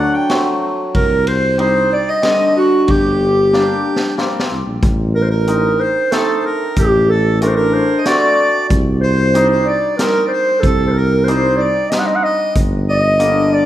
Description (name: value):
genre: klezmer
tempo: 93 BPM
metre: 3/4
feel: straight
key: unclear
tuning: A4 = 440 Hz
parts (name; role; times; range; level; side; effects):
- dark clarinet; melody; 0.0-13.7 s; F#4 to G5; -16 LUFS; right 1 dB; none
- accordion; second line; 0.0-13.7 s; F#4 to G5; -20 LUFS; equal; none
- hammered dulcimer; accompaniment; 0.0-13.7 s; D3 to F#4; -20 LUFS; left 2 dB; none
- mellow tuba; bass; 0.0-13.7 s; G1 to D2; -17 LUFS; equal; none
- street-band drum kit; drums; 0.3-13.3 s; hi-hat, kick drum, ride cymbal, snare drum; -19 LUFS; equal; none
room: moderate recital hall reverb, RT60 1.5 s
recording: none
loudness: -12 LUFS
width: side -12 dB against mid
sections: 0.0-4.8 A section; 4.8-13.7 B section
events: drum fill 3.5-4.8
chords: 0.0 D; 1.0 Cm; 2.9 Gm; 4.8 Adim; 8.7 Cm; 12.6 Gm